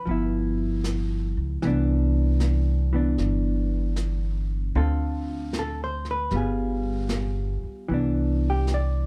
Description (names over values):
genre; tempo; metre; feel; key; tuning
jazz ballad; 77 BPM; 4/4; swing 67% on 8ths; C major; A4 = 439 Hz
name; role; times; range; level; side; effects
vintage hollow-body jazz guitar; accompaniment; 0.0-9.1 s; D3 to D5; -30 LUFS; equal; none
upright bass; bass; 0.1-9.1 s; G1 to D2; -27 LUFS; equal; none
jazz brush drum kit; drums; 0.1-9.1 s; brushed snare drum, hi-hat, snare drum; -39 LUFS; equal; none
room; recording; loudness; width
little or no reverb; dark, warm production; -25 LUFS; mono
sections
0.0-7.9 A section; 7.9-9.1 B section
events
none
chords
0.1 G6; 1.6 Cmaj9; 4.7 Dm7; 6.3 G7b9; 7.9 Cmaj9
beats
0.06 0.84 | 1.62 2.40 3.18 3.96 | 4.75 5.53 6.31 7.10 | 7.89 8.68